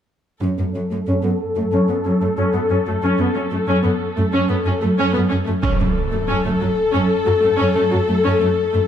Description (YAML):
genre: cinematic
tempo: 92 BPM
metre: 4/4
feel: straight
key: F# minor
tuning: A4 = 440 Hz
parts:
  - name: warm symphonic viola section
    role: accompaniment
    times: 0.4-8.9 s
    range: F#3 to A4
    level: -18 LUFS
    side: left 2 dB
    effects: low-pass filter
  - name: rich symphonic cello section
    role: bass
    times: 0.4-8.8 s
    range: F#2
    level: -20 LUFS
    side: right 1 dB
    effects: none
  - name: impact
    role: sound effects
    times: 5.6-8.2 s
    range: none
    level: -24 LUFS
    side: right 2 dB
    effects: none
room: moderate scoring stage reverb, RT60 1.7 s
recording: none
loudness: -16 LUFS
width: side -9 dB against mid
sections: 0.4-5.6 A section; 5.6-8.9 B section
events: filter sweep on viola section 0.4-5.6; impact 5.6-8.2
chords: 0.4 F#m